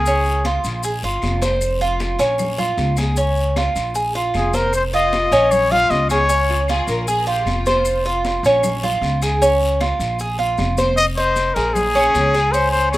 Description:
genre	latin, Cuban son and guajira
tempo	154 BPM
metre	4/4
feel	straight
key	unclear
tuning	A4 = 440 Hz
part	breathy trumpet	melody	0.0-0.4, 4.4-6.7, 11.0-13.0 s	Ab4 to F5	-18 LUFS	left 2 dB	tape echo
part	Cuban tres	arpeggios	0.0-13.0 s	Db4 to C5	-19 LUFS	right 2 dB	none
part	upright bass	bass	0.0-13.0 s	F1 to Db2	-22 LUFS	equal	none
part	congas	percussion	0.1-13.0 s	none	-29 LUFS	left 3 dB	none
part	guiro	percussion	0.1-13.0 s	none	-32 LUFS	left 4 dB	none
part	maracas	percussion	0.1-13.0 s	none	-34 LUFS	left 6 dB	none
part	claves	percussion	0.4-13.0 s	none	-39 LUFS	left 5 dB	none
part	rich studio violin section	second line	6.5-8.2 s	F4 to Bb4	-28 LUFS	left 2 dB	tape echo
room	light reverb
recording	rough home demo mix, faint mains hum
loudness	-16 LUFS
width	side -16 dB against mid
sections	0.0-11.0 A section; 11.0-13.0 B section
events	none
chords	0.1 Db; 0.8 Bb5; 1.6 F5; 2.4 Bbm7; 3.2 Db; 4.0 Bb5; 4.7 F5; 5.5 Bbm7; 6.3 Db; 7.1 Bb5; 7.9 F5; 8.6 Bbm7; 9.4 Db; 10.2 Bb5; 11.0 Fm7; 11.8 Bbm7

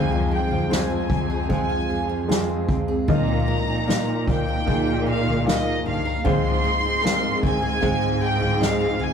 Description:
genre	pop ballad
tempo	76 BPM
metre	4/4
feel	straight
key	unclear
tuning	A4 = 439 Hz
part	warm studio violin section	melody	0.0-9.1 s	Eb5 to C6	-27 LUFS	equal	none
part	warm grand piano	accompaniment	0.0-9.1 s	Ab2 to F5	-27 LUFS	right 1 dB	none
part	glassy FM pad	sustained chords	0.0-9.1 s	F3 to F4	-32 LUFS	right 2 dB	ensemble chorus, built-in reverb, phaser
part	fingerpicked steel-string acoustic guitar	arpeggios	0.0-9.1 s	Bb2 to Bb4	-30 LUFS	left 1 dB	none
part	dark symphonic cello section	bass	0.0-9.1 s	F2 to Bb2	-27 LUFS	right 1 dB	none
part	soft-mallet drum kit	drums	0.5-9.1 s	kick drum, snare drum, toms	-24 LUFS	left 2 dB	none
room	moderate small room reverb, RT60 0.5 s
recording	rough rehearsal-room recording, warm saturation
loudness	-20 LUFS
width	side -7 dB against mid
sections	0.0-9.1 A section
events	none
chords	0.0 Fm; 3.1 Bbsus4; 6.3 Fm/Ab

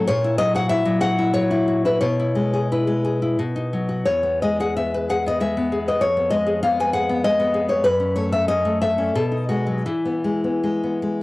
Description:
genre	romantic piece for solo classical guitar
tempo	76-100 BPM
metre	3/4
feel	rubato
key	E major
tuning	A4 = 441 Hz
part	nylon-string guitar	solo	0.0-11.2 s	E2 to Ab5	-18 LUFS	left 1 dB	cassette tape
room	moderate studio reverb, RT60 0.6 s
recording	home recording on cassette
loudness	-18 LUFS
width	side -19 dB against mid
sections	0.0-11.2 A section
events	none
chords	0.1 F#7/A#; 2.0 E/B; 3.4 B; 4.1 E; 6.0 Fm7b5; 7.9 F#m; 9.1 B6; 9.8 E

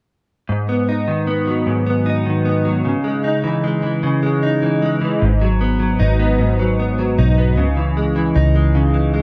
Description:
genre	six-eight pop ballad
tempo	51 BPM (dotted quarters)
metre	6/8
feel	straight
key	G# minor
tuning	A4 = 441 Hz
part	direct-recorded clean electric guitar	accompaniment	0.5-9.2 s	G#2 to D#4	-19 LUFS	equal	double-tracked
part	vintage muted fingered electric bass	bass	5.2-9.2 s	G#1 to C#2	-19 LUFS	equal	none
room	moderate echo chamber reverb, RT60 2.0 s, digital ambience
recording	none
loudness	-17 LUFS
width	mono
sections	0.5-5.2 A section; 5.2-9.2 B section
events	none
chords	0.5 G#m7; 2.9 C#madd9; 5.2 G#m7; 7.6 C#madd9

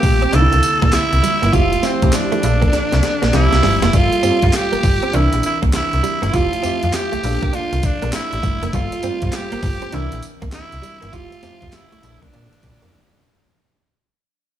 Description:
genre	R&B, new jack swing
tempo	100 BPM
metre	4/4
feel	swing 64% on 16ths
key	unclear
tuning	A4 = 440 Hz
part	raspy tenor saxophone	melody	0.0-13.2 s	C4 to A4	-20 LUFS	right 1 dB	slapback echo
part	warm analog keys	accompaniment	0.0-13.6 s	D3 to E5	-23 LUFS	equal	chorus
part	direct-recorded clean electric guitar	riff	0.0-12.9 s	G3 to F4	-26 LUFS	right 4 dB	ensemble chorus
part	slap-like FM bass	bass	0.0-12.9 s	F1 to Bb2	-18 LUFS	equal	none
part	breakbeat sampler-style drum kit	drums	0.0-12.9 s	handclaps, hi-hat, kick drum, snare drum, tambourine	-21 LUFS	equal	none
part	group handclap	percussion	0.3-11.9 s	none	-38 LUFS	left 5 dB	none
room	light reverb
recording	small room reverb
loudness	-14 LUFS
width	side -11 dB against mid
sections	0.0-3.9 A section; 3.9-13.5 B section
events	drum fill 2.7-3.9; fade-out 3.9-13.5; break 12.9-13.5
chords	0.3 C9; 1.5 Fmaj9; 2.4 Bbmaj7; 3.3 C7sus4; 3.9 Gm9; 5.1 C9; 6.3 Fmaj9; 7.2 Bbmaj7; 8.7 Gm9; 9.9 C9; 11.1 Fmaj9; 12.0 Bbmaj7

